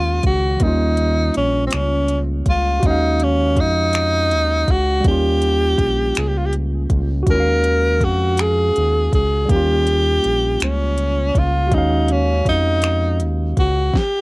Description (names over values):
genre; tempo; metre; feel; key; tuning
slow six-eight R&B; 54 BPM (dotted quarters); 6/8; straight; unclear; A4 = 445 Hz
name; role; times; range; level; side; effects
breathy tenor saxophone; melody; 0.0-14.2 s; C4 to Bb4; -19 LUFS; equal; cassette tape
barky tine electric piano; accompaniment; 0.0-14.0 s; Eb3 to F5; -23 LUFS; right 2 dB; overdrive, cassette tape
round analog bass; bass; 0.0-13.9 s; Bb1 to F2; -20 LUFS; equal; none
smooth R&B drum kit; drums; 0.2-14.1 s; finger snaps, hi-hat, kick drum, snare drum; -20 LUFS; equal; overdrive, cassette tape
room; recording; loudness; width
light reverb; home recording on cassette; -15 LUFS; side -24 dB against mid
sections
0.0-14.2 A section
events
none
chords
0.0 Eb9sus4; 0.6 Eb9; 2.8 Ebm11; 5.0 Eb9; 7.3 Ebm11; 9.5 Eb9; 11.7 Ebm11